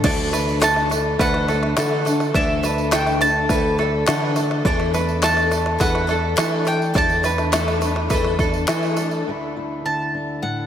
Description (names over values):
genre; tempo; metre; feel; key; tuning
indie folk with a building arrangement; 104 BPM; 4/4; straight; D major; A4 = 440 Hz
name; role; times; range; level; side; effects
picked twelve-string acoustic guitar; accompaniment; 0.0-9.3 s; D3 to A4; -24 LUFS; left 4 dB; ensemble chorus
tenor ukulele; arpeggios; 0.0-9.3 s; A4 to D5; -26 LUFS; right 4 dB; analog delay
picked electric bass; bass; 0.0-9.2 s; D2 to E3; -23 LUFS; equal; none
organic electronic drum kit; drums; 0.0-9.0 s; crash cymbal, kick drum, snare drum; -23 LUFS; equal; overdrive
tambourine; percussion; 0.3-9.2 s; none; -35 LUFS; right 8 dB; none
bowl-back mandolin; melody; 0.6-10.7 s; E5 to A5; -23 LUFS; right 1 dB; analog delay
group handclap; percussion; 0.6-8.8 s; none; -32 LUFS; left 6 dB; none
fingerpicked steel-string acoustic guitar; accompaniment; 9.3-10.7 s; D2 to E4; -26 LUFS; left 1 dB; none
room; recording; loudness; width
moderate huge ambient reverb, RT60 3.9 s; dreamy mix soaked in reverb; -17 LUFS; side -9 dB against mid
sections
0.0-9.3 A section; 9.3-10.7 B section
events
none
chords
0.0 Dsus2; 4.7 Asus4/E; 9.3 Dsus2